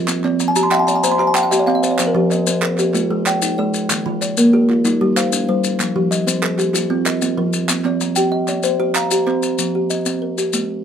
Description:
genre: southern african traditional, mbira-style interlocking cycle.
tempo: 127 BPM (dotted quarters).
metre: 12/8.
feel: straight.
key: F equiheptatonic.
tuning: A4 = 439 Hz.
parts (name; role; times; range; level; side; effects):
kalimba; arpeggios; 0.0-10.8 s; Eb3+29c to Bb5; -19 LUFS; left 1 dB; none.
kalimba; arpeggios; 0.0-9.7 s; Eb3+29c to C6; -18 LUFS; right 2 dB; none.
group handclap; percussion; 0.1-9.4 s; none; -24 LUFS; right 4 dB; none.
maracas; percussion; 0.1-10.7 s; none; -23 LUFS; left 8 dB; none.
room: moderate small room reverb, RT60 0.6 s.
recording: none.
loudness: -15 LUFS.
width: side -8 dB against mid.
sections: 0.0-9.6 A section; 9.6-10.8 A section.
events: kalimba fill 0.3-2.0.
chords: 0.1 Cm; 2.0 Fm; 2.9 Ab5; 3.9 Eb; 4.8 G5; 5.8 Fm; 7.7 Cm; 9.6 F5.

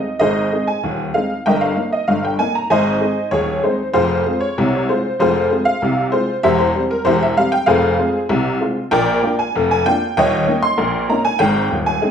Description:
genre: ragtime piano.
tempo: 96 BPM.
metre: 2/4.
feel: straight.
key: Ab major.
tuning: A4 = 440 Hz.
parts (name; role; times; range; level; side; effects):
honky-tonk upright piano; solo; 0.0-12.1 s; Eb1 to C6; -15 LUFS; equal; none.
room: wet large studio reverb, RT60 0.9 s.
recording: band playing live in one room.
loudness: -15 LUFS.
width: side -8 dB against mid.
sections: 0.0-12.1 A section.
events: none.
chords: 0.0 Ab; 1.4 Eb/G; 2.7 Ab; 3.9 Fm; 6.4 C/E; 7.7 Fm; 8.9 Bb; 10.2 Eb5; 11.4 Ab5.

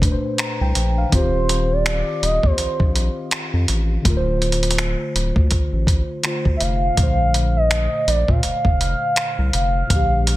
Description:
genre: contemporary R&B.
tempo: 82 BPM.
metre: 4/4.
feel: swing 58% on 16ths.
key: Bb major.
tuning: A4 = 441 Hz.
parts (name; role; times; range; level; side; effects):
muted felt-like synth keys; accompaniment; 0.0-10.4 s; Bb2 to Bb5; -25 LUFS; left 1 dB; chorus.
saturated sub bass; bass; 0.0-10.4 s; D1 to Bb2; -21 LUFS; equal; none.
dusty soul sampler-style drum kit; drums; 0.0-10.4 s; finger snaps, hi-hat, kick drum; -20 LUFS; equal; soft clipping on snare.
gliding portamento lead; melody; 1.1-10.4 s; C5 to F5; -22 LUFS; right 1 dB; chorus.
room: little or no reverb.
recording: dense, heavily limited modern master.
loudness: -17 LUFS.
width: side -16 dB against mid.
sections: 0.0-10.4 A section.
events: none.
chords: 0.0 Bbmaj9; 1.1 Eb69; 4.0 Dm7; 7.0 Bbmaj9.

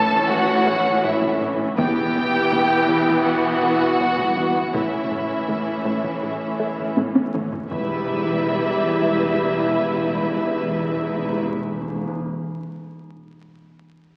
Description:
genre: cinematic, suspense film score.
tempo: 81 BPM.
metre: 4/4.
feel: straight.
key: E dorian.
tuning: A4 = 440 Hz.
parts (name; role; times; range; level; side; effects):
clear studio violin section; melody; 0.0-11.4 s; E5 to A5; -28 LUFS; equal; none.
clear studio violin section; second line; 0.0-11.4 s; E4 to B4; -28 LUFS; equal; none.
rich studio viola section; accompaniment; 0.0-11.4 s; E3 to E4; -25 LUFS; equal; none.
plucky analog bass; riff; 0.0-7.6 s; E2 to A3; -31 LUFS; equal; none.
rich studio cello section; bass; 0.0-11.4 s; E2 to A2; -32 LUFS; equal; none.
warm studio double bass section; bass; 0.0-11.4 s; E1 to A1; -39 LUFS; equal; none.
taiko ensemble; drums; 0.1-7.9 s; none; -29 LUFS; equal; none.
timpani; percussion; 1.8-2.9, 7.7-12.1 s; E2; -31 LUFS; equal; none.
room: wet concert hall reverb, RT60 2.3 s.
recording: very old 78 rpm record, vinyl crackle.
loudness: -21 LUFS.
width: mono.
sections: 0.0-7.7 A section; 7.7-10.7 B section.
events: drum fill 7.0-7.7.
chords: 0.0 A; 1.8 Em; 4.7 A; 7.7 Em.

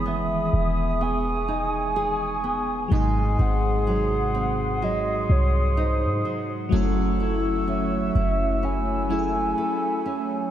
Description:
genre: contemporary R&B.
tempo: 63 BPM.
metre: 4/4.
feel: swing 58% on 16ths.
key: unclear.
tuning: A4 = 440 Hz.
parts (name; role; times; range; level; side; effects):
FM electric piano with soft pad layer; accompaniment; 0.0-10.5 s; B#2 to A4; -29 LUFS; left 1 dB; chorus, phaser.
mellow woodwind section; sustained chords; 0.0-10.5 s; A3 to E6; -30 LUFS; right 1 dB; none.
nylon-string guitar; arpeggios; 0.0-10.5 s; G#2 to A4; -30 LUFS; right 1 dB; wide subtle chorus.
clean 808-style bass; bass; 0.0-9.5 s; E1 to G#2; -25 LUFS; equal; none.
hollow clarinet-like synth lead; melody; 0.1-10.5 s; B#4 to G#5; -29 LUFS; right 1 dB; chorus, analog delay.
room: moderate lush hall reverb, RT60 3.1 s.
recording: dreamy mix soaked in reverb.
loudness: -21 LUFS.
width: side -11 dB against mid.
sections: 0.0-10.5 A section.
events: none.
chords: 0.0 Emaj7; 2.9 G#7; 6.7 F#m7.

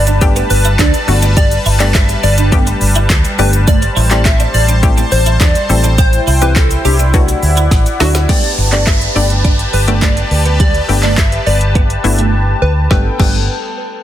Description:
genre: dance-pop.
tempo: 104 BPM.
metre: 4/4.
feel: straight.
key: G major.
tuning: A4 = 443 Hz.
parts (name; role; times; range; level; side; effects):
plucky unison lead; melody; 0.0-13.5 s; F#4 to E5; -20 LUFS; equal; tape echo.
sweeping resonant pad; sustained chords; 0.0-13.2 s; G3 to A5; -20 LUFS; left 1 dB; chorus, sidechain pumping.
vintage muted fingered electric bass; bass; 0.0-13.5 s; G1 to E2; -13 LUFS; equal; sidechain pumping.
twelve-string electric guitar; riff; 0.1-13.4 s; G3 to G4; -22 LUFS; right 6 dB; ensemble chorus.
deep house drum kit; drums; 0.1-13.3 s; crash cymbal, handclaps, hi-hat, kick drum, shaker, snare drum; -14 LUFS; equal; none.
tube shaker; percussion; 0.1-8.3 s; none; -31 LUFS; left 7 dB; none.
hollow square pluck; accompaniment; 0.2-13.5 s; E3 to A4; -21 LUFS; left 4 dB; chorus, sidechain pumping.
downlifter; sound effects; 8.3-12.9 s; none; -23 LUFS; right 1 dB; none.
room: light reverb.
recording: dense, heavily limited modern master.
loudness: -9 LUFS.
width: side -12 dB against mid.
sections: 0.0-8.3 A section; 8.3-12.9 B section; 12.9-14.0 C section.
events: drop 0.0-8.3; drum fill 7.7-8.3; silent gap 12.3-12.9.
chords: 0.0 Gadd9; 3.7 Am7; 6.0 C; 7.1 Dadd9; 8.3 Gadd9.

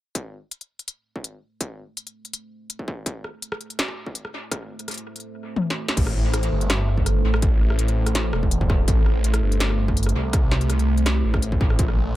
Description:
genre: half-time drum and bass.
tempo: 165 BPM.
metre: 4/4.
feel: half-time.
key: A phrygian.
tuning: A4 = 439 Hz.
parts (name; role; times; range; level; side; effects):
deep dark ambient pad; sustained chords; 2.2-12.2 s; A3 to E5; -30 LUFS; right 1 dB; chorus, built-in reverb, vintage 12-bit sampler grit, sidechain pumping.
electronic kick drum; drums; 0.2-11.9 s; none; -23 LUFS; equal; distortion, high-pass filter on kick, high-pass filter on room.
industrial drum kit; drums; 0.2-12.0 s; crash cymbal, hi-hat, rim click, snare drum, toms; -27 LUFS; left 1 dB; dub echo.
phased detuned saw bass; bass; 6.0-12.2 s; E1 to C2; -21 LUFS; equal; phaser.
room: little or no reverb.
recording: echo-heavy mix.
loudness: -19 LUFS.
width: side -15 dB against mid.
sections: 0.2-6.0 A section; 6.0-12.2 B section.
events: filter sweep on ambient pad 0.2-6.0; drum fill 5.6-6.0; drop 6.0-12.2.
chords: 0.2 Am.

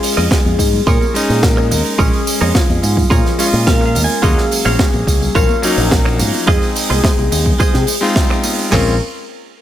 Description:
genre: nu-disco, nu disco.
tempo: 107 BPM.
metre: 4/4.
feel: straight.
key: Bb minor.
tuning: A4 = 436 Hz.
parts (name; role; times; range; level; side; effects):
soft octave-layered synth lead; melody; 0.0-9.0 s; F4 to Bb4; -20 LUFS; left 2 dB; chorus, phaser, vintage 12-bit sampler grit, tape echo.
warm electric grand piano; accompaniment; 0.0-8.9 s; Gb3 to F5; -20 LUFS; left 2 dB; ping-pong delay.
tight funk drum kit; drums; 0.0-8.7 s; hi-hat, snare drum, tambourine; -20 LUFS; right 2 dB; studio reverb.
direct-recorded clean electric guitar; riff; 0.2-9.0 s; F4 to Ab5; -21 LUFS; right 3 dB; lush chorus.
fingered electric bass with an envelope filter; bass; 0.2-9.0 s; Bb1 to C3; -17 LUFS; equal; tube saturation.
congas; percussion; 0.2-8.6 s; none; -26 LUFS; left 2 dB; none.
pop drum kit; drums; 0.3-8.9 s; crash cymbal, kick drum, snare drum, toms; -16 LUFS; equal; studio reverb.
room: small room ambience.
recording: none.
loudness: -11 LUFS.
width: side -12 dB against mid.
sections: 0.0-8.7 A section.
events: drop 0.0-8.7; clean electric guitar fill 3.1-4.2; band accent 8.2.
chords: 0.0 Bbm7; 4.2 Ebm9; 6.5 Fm7; 8.7 Bbm7.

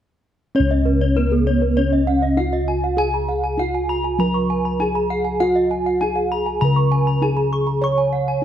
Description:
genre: Balinese gamelan.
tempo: 99 BPM.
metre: 4/4.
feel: straight.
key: Db slendro.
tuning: A4 = 438 Hz.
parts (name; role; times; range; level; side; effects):
gamelan-type bossed gongs; bass; 0.5-8.4 s; Db2 to Db5; -20 LUFS; left 1 dB; none.
gamelan-type bronze metallophone; melody; 0.6-8.4 s; Cb4-45c to Db5; -22 LUFS; right 2 dB; none.
gamelan-type bronze metallophone; arpeggios; 0.6-8.4 s; Cb5-45c to Db6; -26 LUFS; left 4 dB; none.
gamelan-type bronze metallophone; arpeggios; 0.7-8.3 s; Ab4+25c to Db6; -27 LUFS; right 6 dB; none.
room: light reverb.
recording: none.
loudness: -17 LUFS.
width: side -10 dB against mid.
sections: 0.6-8.4 A section.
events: none.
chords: none.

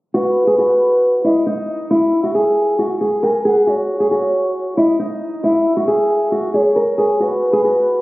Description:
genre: hip hop.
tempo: 136 BPM.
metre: 4/4.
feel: half-time.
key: unclear.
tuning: A4 = 441 Hz.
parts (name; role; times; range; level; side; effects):
fingerpicked steel-string acoustic guitar; melody; 0.1-8.0 s; D#4 to A#4; -15 LUFS; equal; tape echo.
gliding portamento lead; second line; 0.1-8.0 s; B4 to G#5; -19 LUFS; equal; chorus, tape echo.
room: moderate concert hall reverb, RT60 2.3 s.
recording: recorded on a phone in the room, studio reverb, low-pass filter.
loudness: -14 LUFS.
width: side -19 dB against mid.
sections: 0.1-8.0 A section.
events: filter sweep 0.1-8.0.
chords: none.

